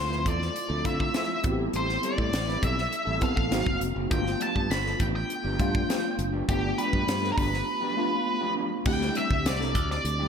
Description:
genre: polished 1980s jazz-funk pop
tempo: 101 BPM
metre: 4/4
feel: straight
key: unclear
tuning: A4 = 440 Hz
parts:
  - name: octave-fuzz lead guitar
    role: melody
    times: 0.0-10.3 s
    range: G4 to B5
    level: -30 LUFS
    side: equal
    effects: distortion, slapback echo
  - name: tine electric piano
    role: accompaniment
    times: 0.0-10.3 s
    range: A3 to A4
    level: -31 LUFS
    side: left 1 dB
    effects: overdrive, fast stereo tremolo, ensemble chorus, slapback echo
  - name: modern bright fingered electric bass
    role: bass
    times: 0.0-10.3 s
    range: F1 to D3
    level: -31 LUFS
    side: equal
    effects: none
  - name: electric guitar at the edge of break-up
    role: riff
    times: 0.1-10.3 s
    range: F3 to B4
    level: -35 LUFS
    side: right 3 dB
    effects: wide subtle chorus, slapback echo
  - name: crisp fusion drum kit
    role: drums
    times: 0.1-10.2 s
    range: crash cymbal, hi-hat, kick drum, snare drum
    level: -30 LUFS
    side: equal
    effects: none
room: moderate lush hall reverb, RT60 1.8 s, small room ambience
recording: big arena sound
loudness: -24 LUFS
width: side -7 dB against mid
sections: 0.0-8.9 A section; 8.9-10.3 B section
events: none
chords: 0.0 Dm9; 1.4 Am7; 3.5 Ab9; 4.1 G7; 8.9 D7sus4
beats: 0.56 1.15 | 1.75 2.34 2.93 3.52 | 4.12 4.71 5.30 5.90 | 6.49 7.08 7.68 8.27 | 8.87 9.46 10.05

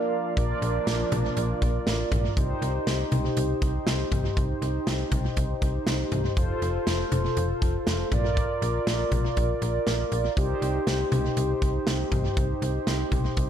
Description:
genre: synth-pop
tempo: 120 BPM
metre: 4/4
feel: straight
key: C dorian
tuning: A4 = 439 Hz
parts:
  - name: mellow synth brass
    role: accompaniment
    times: 0.0-13.5 s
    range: Eb4 to F5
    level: -28 LUFS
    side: right 1 dB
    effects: chorus, tape echo
  - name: warm analog pad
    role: sustained chords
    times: 0.0-2.3 s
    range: F3 to D4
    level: -34 LUFS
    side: left 2 dB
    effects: lush chorus
  - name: slap-like FM bass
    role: bass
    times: 0.4-13.5 s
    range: F1 to C2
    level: -28 LUFS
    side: equal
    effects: none
  - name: modern studio drum kit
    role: drums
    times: 0.4-13.5 s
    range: hi-hat, kick drum, snare drum, toms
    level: -28 LUFS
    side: equal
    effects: tape echo
room: light reverb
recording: echo-heavy mix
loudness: -23 LUFS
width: side -9 dB against mid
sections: 0.4-2.4 A section; 2.4-13.5 B section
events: break 0.0-0.4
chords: 0.4 Bb; 2.4 Cm; 6.4 F; 8.1 Bb; 10.4 Cm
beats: | 0.37 0.87 1.37 1.87 | 2.37 2.87 3.37 3.87 | 4.37 4.87 5.37 5.87 | 6.37 6.87 7.37 7.87 | 8.37 8.87 9.37 9.87 | 10.37 10.87 11.37 11.87 | 12.37 12.87 13.37

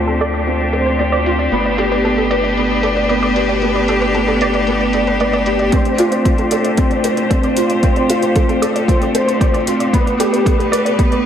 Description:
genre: piano and strings electronica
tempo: 114 BPM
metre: 4/4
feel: straight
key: unclear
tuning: A4 = 440 Hz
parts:
  - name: clear string quartet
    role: sustained chords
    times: 0.0-11.3 s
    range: A3 to C5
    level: -18 LUFS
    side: left 1 dB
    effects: sidechain pumping, low-pass filter
  - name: felt-muted upright piano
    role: riff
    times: 0.0-11.3 s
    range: B3 to D5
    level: -17 LUFS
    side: equal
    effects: ensemble chorus, diffuse ambient delay
  - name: round analog bass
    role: bass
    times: 0.0-5.7 s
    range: G1 to D2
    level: -23 LUFS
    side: equal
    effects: sidechain pumping
  - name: analog pluck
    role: arpeggios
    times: 0.1-10.9 s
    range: A4 to D5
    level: -23 LUFS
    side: right 2 dB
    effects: chorus, sidechain pumping, diffuse ambient delay
  - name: electronic hi-hat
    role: drums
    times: 0.1-11.2 s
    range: none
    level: -29 LUFS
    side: equal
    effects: overdrive, low-pass filter on hats, low-pass filter on room
  - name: electronic kick drum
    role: drums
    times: 5.7-11.1 s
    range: none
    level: -16 LUFS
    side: equal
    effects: overdrive
room: moderate plate reverb, RT60 1.7 s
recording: dreamy mix soaked in reverb, low-pass filter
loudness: -13 LUFS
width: side -9 dB against mid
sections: 0.0-5.7 A section; 5.7-11.3 B section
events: filter sweep on synth arpeggio sound 0.0-5.7, 5.7-11.3; build-up 5.7-11.3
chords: 0.0 Dm7; 1.5 G; 5.7 Dm7; 9.9 G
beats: 0.47 0.99 | 1.52 2.04 2.57 3.10 | 3.62 4.15 4.68 5.20 | 5.73 6.26 6.78 7.31 | 7.83 8.36 8.89 9.41 | 9.94 10.47 10.99

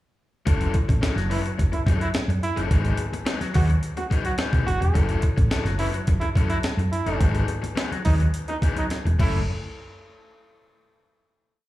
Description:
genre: funk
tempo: 106 BPM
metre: 4/4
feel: straight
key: F# dorian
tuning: A4 = 442 Hz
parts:
  - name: raw garage guitar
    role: accompaniment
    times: 0.5-9.4 s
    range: F#3 to B4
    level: -29 LUFS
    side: left 5 dB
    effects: overdrive, spring reverb, slapback echo
  - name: hollow-body short-scale fingered electric bass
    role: bass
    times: 0.5-9.5 s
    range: E1 to F#2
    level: -23 LUFS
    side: equal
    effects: none
  - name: breakbeat sampler-style drum kit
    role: drums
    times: 0.5-9.3 s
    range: crash cymbal, hi-hat, kick drum, snare drum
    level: -23 LUFS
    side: equal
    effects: none
  - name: brilliant trombone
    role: second line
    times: 1.3-9.4 s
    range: D#4 to F#4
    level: -31 LUFS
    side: right 4 dB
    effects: slapback echo
room: little or no reverb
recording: live gig heard through the venue's PA, club reverb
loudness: -21 LUFS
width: side -16 dB against mid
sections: 0.5-9.5 groove; 9.5-11.7 final hit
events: drum fill 8.9-9.5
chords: 0.5 F#m7; 2.7 G#m7; 5.0 F#m7; 7.2 G#m7; 9.2 F#m7; 9.5 N.C.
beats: | 0.47 1.03 1.59 2.15 | 2.71 3.27 3.83 4.39 | 4.95 5.51 6.08 6.64 | 7.21 7.77 8.34 8.90

